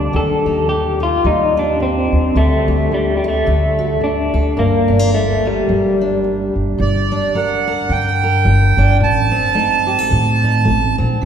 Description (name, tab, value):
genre	acoustic folk duo or small band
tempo	108 BPM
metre	4/4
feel	swing 58% on 8ths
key	G minor, G harmonic minor from 6.8 s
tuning	A4 = 435 Hz
part	electric guitar through a small old amp	melody	0.0-6.5 s	G3 to A4	-17 LUFS	left 1 dB	tremolo
part	fingerpicked steel-string acoustic guitar	accompaniment	0.0-11.3 s	G2 to Bb4	-21 LUFS	left 1 dB	none
part	upright bass	bass	0.0-11.3 s	G1 to A2	-18 LUFS	equal	none
part	accordion	second line	6.8-11.0 s	D5 to A5	-17 LUFS	right 6 dB	none
room	wet church reverb, RT60 3.3 s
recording	recorded in a church or concert hall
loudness	-13 LUFS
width	side -8 dB against mid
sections	0.0-6.8 A section; 6.8-11.3 B section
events	accordion solo 6.8-11.3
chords	0.1 Cmadd9/Eb; 2.4 Dsus4; 3.5 D; 4.6 Gm7; 6.8 Gm; 9.0 Adim